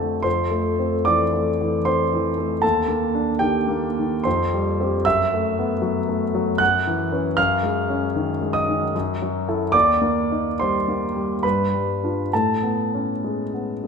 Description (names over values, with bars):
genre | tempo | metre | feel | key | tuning
classical, impressionist solo piano | 66-79 BPM | 3/4 | rubato | unclear | A4 = 440 Hz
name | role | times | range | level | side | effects
warm concert grand piano | solo | 0.0-13.9 s | Eb2 to F#6 | -19 LUFS | equal | none
room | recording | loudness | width
moderate scoring stage reverb, RT60 1.9 s | minimal, uncompressed stereo recording | -19 LUFS | side -6 dB against mid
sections
0.0-13.9 A section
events
none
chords
0.3 Fmaj7; 2.6 Ebmaj7; 4.3 Fsus2; 5.0 F#m7; 6.6 F#7sus4; 7.4 C#add9/F#; 8.9 F#m7; 9.7 D#6; 11.4 G7; 12.3 Amaj9